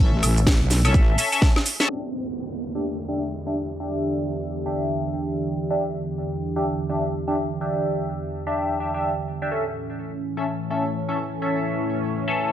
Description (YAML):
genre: bass house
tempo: 126 BPM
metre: 4/4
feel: swing 60% on 16ths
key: E dorian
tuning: A4 = 443 Hz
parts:
  - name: band-passed chord stab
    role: stabs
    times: 0.0-12.5 s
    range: C#4 to E5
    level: -26 LUFS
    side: left 1 dB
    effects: phaser, sidechain pumping, digital delay
  - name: wobble bass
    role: bass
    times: 0.0-1.2 s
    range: A1 to B1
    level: -20 LUFS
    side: equal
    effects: chorus, overdrive, sidechain pumping
  - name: house drum kit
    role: drums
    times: 0.2-1.9 s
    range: hi-hat, shaker, snare drum, woodblock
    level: -24 LUFS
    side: equal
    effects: none
  - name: electronic kick drum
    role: drums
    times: 0.5-1.5 s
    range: none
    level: -18 LUFS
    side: equal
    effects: none
  - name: sweeping resonant pad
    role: sustained chords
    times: 1.9-12.5 s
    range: E2 to G4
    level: -28 LUFS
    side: right 1 dB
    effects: chorus, sidechain pumping
  - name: downlifter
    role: sound effects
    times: 1.9-5.7 s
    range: none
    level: -34 LUFS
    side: right 1 dB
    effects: none
room: light reverb, digital ambience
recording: low-pass filter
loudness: -22 LUFS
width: side -11 dB against mid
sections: 0.0-1.9 A section; 1.9-12.5 B section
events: drum fill 1.4-1.9; band accent 1.8; filter sweep 1.9-12.5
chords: 0.0 A; 1.9 Em7; 9.5 A